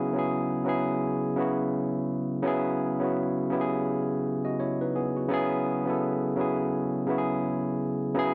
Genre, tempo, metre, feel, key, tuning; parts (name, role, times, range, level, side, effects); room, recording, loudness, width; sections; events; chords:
R&B; 84 BPM; 4/4; swing 58% on 16ths; A4 = 441 Hz
barky tine electric piano; solo; 0.0-8.3 s; C#3 to D#5; -28 LUFS; equal; overdrive, slapback echo
light reverb; -28 LUFS; mono
0.0-8.3 A section
0.0 Eadd9; 5.3 F#m9